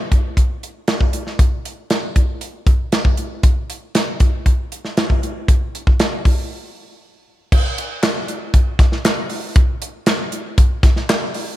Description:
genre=pop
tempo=118 BPM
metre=4/4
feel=straight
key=none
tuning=none
part: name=modern studio drum kit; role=drums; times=0.1-11.5 s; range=crash cymbal, hi-hat, kick drum, snare drum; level=-15 LUFS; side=equal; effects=none
part: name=group handclap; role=percussion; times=8.0-11.2 s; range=none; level=-30 LUFS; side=left 3 dB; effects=none
room=light reverb, small room ambience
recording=none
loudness=-15 LUFS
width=side -14 dB against mid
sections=0.0-7.5 A section; 7.5-11.6 B section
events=break 6.5-7.5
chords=none

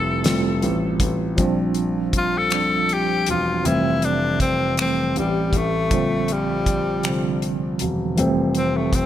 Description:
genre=slow six-eight R&B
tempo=53 BPM (dotted quarters)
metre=6/8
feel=straight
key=unclear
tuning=A4 = 441 Hz
part: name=breathy tenor saxophone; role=melody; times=0.0-9.1 s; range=G3 to A4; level=-23 LUFS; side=left 3 dB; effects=ping-pong delay
part: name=mellow tine electric piano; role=accompaniment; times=0.0-9.1 s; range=C3 to F4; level=-23 LUFS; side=right 2 dB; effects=medium stereo tremolo
part: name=dark grand piano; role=bass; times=0.0-9.1 s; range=E1 to Bb1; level=-25 LUFS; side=left 1 dB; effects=none
part: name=damped 70s drum kit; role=drums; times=0.2-9.1 s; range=finger snaps, hi-hat, kick drum, snare drum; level=-23 LUFS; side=equal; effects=gated reverb
room=light reverb, small room ambience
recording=bright 1980s-style digital production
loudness=-18 LUFS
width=side -11 dB against mid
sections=0.0-1.4 A section; 1.4-9.1 B section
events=tenor saxophone solo 1.4-9.1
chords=0.0 Fmaj7; 1.4 Bb69; 3.6 Fmaj9; 5.9 Bb69; 8.2 Fmaj9

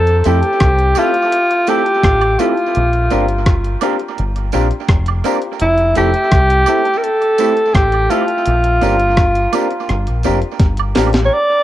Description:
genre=lovers rock reggae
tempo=84 BPM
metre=4/4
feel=straight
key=unclear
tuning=A4 = 439 Hz
part: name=breathy alto saxophone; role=melody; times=0.0-11.6 s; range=E4 to D5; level=-14 LUFS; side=equal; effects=tape echo
part: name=deep dub fingered electric bass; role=bass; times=0.0-11.3 s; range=F1 to F2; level=-16 LUFS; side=equal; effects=none
part: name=clean 12-bit digital drum machine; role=drums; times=0.1-11.3 s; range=hi-hat, kick drum, rim click, snare drum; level=-15 LUFS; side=equal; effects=overdrive, cassette tape
part: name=bright concert grand piano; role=accompaniment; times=0.2-11.2 s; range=A3 to G4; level=-22 LUFS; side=left 10 dB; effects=cassette tape
part: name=electric guitar through a small old amp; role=stabs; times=0.3-11.1 s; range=A3 to Bb4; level=-22 LUFS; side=right 10 dB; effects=cassette tape, tape echo
part: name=tambourine and woodblock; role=percussion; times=0.3-11.1 s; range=none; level=-27 LUFS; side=right 12 dB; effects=tape echo
room=light reverb, small room ambience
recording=home recording on cassette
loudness=-12 LUFS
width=side -13 dB against mid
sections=0.0-11.3 A section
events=drum fill 10.6-11.3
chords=0.0 Fmaj7; 2.7 Bb6; 5.6 Fmaj7; 8.5 Bb6

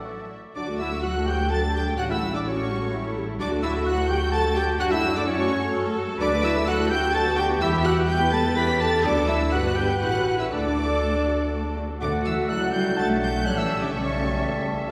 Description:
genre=quick classical-period movement for symphony orchestra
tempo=126 BPM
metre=3/4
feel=rubato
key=D major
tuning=A4 = 440 Hz
part: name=warm studio violin section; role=melody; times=0.0-14.6 s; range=C#6 to B6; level=-34 LUFS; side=equal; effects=none
part: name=bright silver concert flute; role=second line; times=0.0-14.9 s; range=C#5 to C#6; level=-33 LUFS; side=equal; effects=none
part: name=clear oboe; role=second line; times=0.0-14.7 s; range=A4 to B5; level=-35 LUFS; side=equal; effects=none
part: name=rich studio violin section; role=second line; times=0.0-14.9 s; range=E4 to B5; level=-38 LUFS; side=equal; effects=none
part: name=warm clarinet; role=second line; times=0.0-14.9 s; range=C#4 to F#5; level=-33 LUFS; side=equal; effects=none
part: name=dark studio viola section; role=accompaniment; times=0.0-14.9 s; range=E3 to B4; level=-33 LUFS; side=equal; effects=none
part: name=mellow bassoon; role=accompaniment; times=0.0-0.3, 12.0-14.9 s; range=G3 to A3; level=-35 LUFS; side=equal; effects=none
part: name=warm French horn section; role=sustained chords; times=0.0-14.9 s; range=A3 to B4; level=-34 LUFS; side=equal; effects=none
part: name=rich studio cello section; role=bass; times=0.0-14.6 s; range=C#3 to B4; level=-32 LUFS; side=equal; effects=none
part: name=rich studio double bass section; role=bass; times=0.0-14.9 s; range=G1 to F#2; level=-31 LUFS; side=equal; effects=none
room=wet scoring stage reverb, RT60 1.9 s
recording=heard from further back in the room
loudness=-24 LUFS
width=mono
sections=0.6-12.0 A section; 12.0-14.9 B section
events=none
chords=0.1 A; 0.6 D; 2.0 A7; 3.4 D; 4.8 D/F#; 6.2 D; 7.1 Bm/D; 7.6 Em; 8.6 C#dim/E; 9.1 D; 9.5 G; 10.0 A7; 10.5 D; 13.5 A7

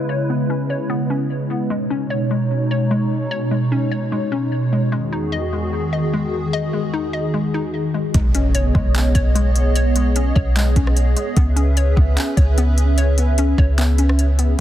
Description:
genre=hip hop, atmospheric cloud-rap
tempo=149 BPM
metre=4/4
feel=half-time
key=B major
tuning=A4 = 440 Hz
part: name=hollow soft pad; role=sustained chords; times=0.0-14.6 s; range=E2 to E5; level=-21 LUFS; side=right 1 dB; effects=ensemble chorus, sidechain pumping, low-pass filter
part: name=hollow square pluck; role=arpeggios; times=0.0-14.6 s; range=G#3 to D#5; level=-24 LUFS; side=left 3 dB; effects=chorus, low-pass filter, tape echo
part: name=soft 808-style bass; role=bass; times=8.1-14.5 s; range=B1 to C#2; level=-16 LUFS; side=equal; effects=none
part: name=smooth R&B drum kit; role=drums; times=8.1-14.5 s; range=handclaps, hi-hat, kick drum, rim click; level=-19 LUFS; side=equal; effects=none
part: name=impact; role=sound effects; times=8.1-9.8 s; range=none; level=-28 LUFS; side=equal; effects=none
room=digital ambience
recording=dense, heavily limited modern master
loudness=-16 LUFS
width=side -12 dB against mid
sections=0.0-8.1 A section; 8.1-14.6 B section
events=filter sweep 0.0-8.1; impact 8.1-9.8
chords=0.0 C#m7; 1.7 B69; 4.9 Emaj9; 8.1 B69; 11.4 C#m7

